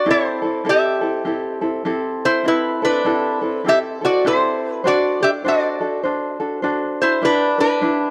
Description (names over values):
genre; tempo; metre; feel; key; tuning
Hawaiian; 101 BPM; 4/4; swing 61% on 8ths; unclear; A4 = 440 Hz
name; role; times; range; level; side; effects
lap resonator guitar; melody; 0.0-8.1 s; D4 to E5; -20 LUFS; equal; none
tenor ukulele; accompaniment; 0.0-8.1 s; C4 to C5; -24 LUFS; equal; none
room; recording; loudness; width
moderate plate reverb, RT60 2.6 s; none; -19 LUFS; mono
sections
0.0-8.1 A section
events
none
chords
0.1 C6; 4.8 D7; 7.2 G6